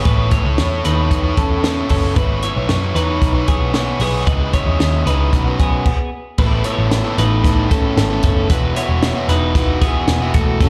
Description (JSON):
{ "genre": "jangly indie pop", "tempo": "114 BPM", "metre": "4/4", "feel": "straight", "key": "E major", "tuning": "A4 = 440 Hz", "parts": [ { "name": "biting overdriven guitar", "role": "accompaniment", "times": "0.0-10.7 s", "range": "B2 to D#5", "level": "-24 LUFS", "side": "equal", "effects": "slapback echo" }, { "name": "twelve-string electric guitar", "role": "arpeggios", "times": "0.0-10.7 s", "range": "A3 to C#5", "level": "-24 LUFS", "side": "equal", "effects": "digital delay, slapback echo" }, { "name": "vintage muted picked electric bass", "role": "bass", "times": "0.1-10.7 s", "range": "E1 to F#2", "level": "-21 LUFS", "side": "equal", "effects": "none" }, { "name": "compact cocktail drum kit", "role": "drums", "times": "0.1-10.7 s", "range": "crash cymbal, hi-hat, kick drum, snare drum", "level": "-20 LUFS", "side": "equal", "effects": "none" } ], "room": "small room ambience", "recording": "live gig heard through the venue's PA, club reverb", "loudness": "-17 LUFS", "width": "mono", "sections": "0.0-6.4 A section; 6.4-10.7 B section", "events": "stop 5.9-6.4", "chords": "0.1 Aadd9; 2.2 E6/G#; 4.3 C#madd9; 5.3 Badd9; 6.4 Asus2; 8.5 Esus2" }